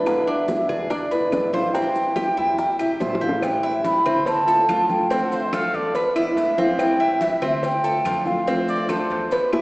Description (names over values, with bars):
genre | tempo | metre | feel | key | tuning
latin, Cuban son and guajira | 143 BPM | 4/4 | straight | A minor | A4 = 442 Hz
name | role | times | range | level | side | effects
mellow hollow concert flute | melody | 0.0-9.6 s | D5 to B5 | -22 LUFS | equal | none
nylon-string guitar | accompaniment | 0.0-9.6 s | B2 to F4 | -26 LUFS | left 1 dB | none
Cuban tres | arpeggios | 0.0-9.6 s | C4 to C5 | -24 LUFS | equal | none
upright bass | bass | 0.0-9.6 s | E1 to F2 | -36 LUFS | equal | none
bongos and cowbell | percussion | 0.1-9.6 s | none | -30 LUFS | left 1 dB | none
claves | percussion | 0.1-9.6 s | none | -41 LUFS | left 1 dB | none
congas | percussion | 0.1-9.6 s | none | -34 LUFS | equal | none
maracas | percussion | 0.1-9.5 s | none | -48 LUFS | left 1 dB | none
warm trumpet | second line | 5.3-6.1, 8.7-9.4 s | C5 to F5 | -27 LUFS | equal | none
room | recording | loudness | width
wet concert hall reverb, RT60 2.3 s | recorded in a church or concert hall, small speaker sound | -18 LUFS | side -22 dB against mid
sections
0.0-3.4 A section; 3.4-9.6 B section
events
drum fill 3.0-3.4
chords
0.1 E7; 1.7 Am7; 4.3 Dm7; 5.1 F69; 6.0 E7; 6.8 Am7; 7.6 Dm7; 8.5 F6